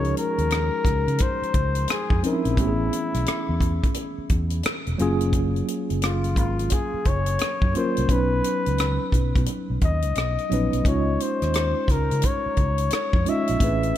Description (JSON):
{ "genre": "R&B, neo-soul", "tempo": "87 BPM", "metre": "4/4", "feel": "swing 64% on 16ths", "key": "Db major", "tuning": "A4 = 440 Hz", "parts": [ { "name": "warm flugelhorn", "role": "melody", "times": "0.0-14.0 s", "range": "Fb4 to Fb5", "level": "-27 LUFS", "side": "left 3 dB", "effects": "ping-pong delay" }, { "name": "mellow tine electric piano", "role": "accompaniment", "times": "0.0-14.0 s", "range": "E3 to Eb5", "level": "-27 LUFS", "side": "right 1 dB", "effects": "medium stereo tremolo" }, { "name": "fingered electric bass", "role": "bass", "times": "0.0-13.9 s", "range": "E1 to Db3", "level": "-25 LUFS", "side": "equal", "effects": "none" }, { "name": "tight funk drum kit", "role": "drums", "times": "0.0-14.0 s", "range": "hi-hat, kick drum, rim click", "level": "-25 LUFS", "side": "equal", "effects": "none" } ], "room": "light reverb, small room ambience", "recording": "none", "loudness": "-20 LUFS", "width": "side -12 dB against mid", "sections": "0.0-14.0 A section", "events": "none", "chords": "0.0 Dbmaj9; 2.6 Amaj9; 5.0 Gbmaj9; 8.1 Cbadd9; 10.8 Dbmaj9", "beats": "0.50 1.19 1.88 | 2.57 3.26 3.95 4.64 | 5.33 6.02 6.71 7.40 | 8.09 8.78 9.47 10.16 | 10.85 11.54 12.23 12.92 | 13.61" }